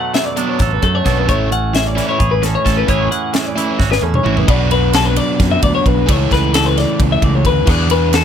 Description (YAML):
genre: math rock and midwest emo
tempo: 262 BPM (eighths)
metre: 7/8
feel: straight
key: A major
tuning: A4 = 437 Hz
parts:
  - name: twangy electric guitar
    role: accompaniment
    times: 0.0-4.5 s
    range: F#2 to A4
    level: -21 LUFS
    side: right 12 dB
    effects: none
  - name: twelve-string electric guitar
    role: arpeggios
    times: 0.0-8.2 s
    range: A4 to F#5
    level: -18 LUFS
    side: left 6 dB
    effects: none
  - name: overdriven electric guitar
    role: riff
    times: 0.1-8.2 s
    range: B2 to B4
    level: -18 LUFS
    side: right 1 dB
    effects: none
  - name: crisp fusion drum kit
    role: drums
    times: 0.1-8.2 s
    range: crash cymbal, hi-hat, kick drum, ride cymbal, snare drum, toms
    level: -18 LUFS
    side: equal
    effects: none
  - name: growling fingered electric bass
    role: bass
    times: 0.6-8.2 s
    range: G#1 to F#2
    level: -17 LUFS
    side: equal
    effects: overdrive
room: little or no reverb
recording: none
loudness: -12 LUFS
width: side -8 dB against mid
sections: 0.0-4.5 A section; 4.5-8.2 B section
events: drum fill 3.8-4.5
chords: 0.0 Bm7; 1.3 A69; 2.9 Amaj9; 4.5 Bm; 6.1 Aadd9/C#; 7.7 E7sus4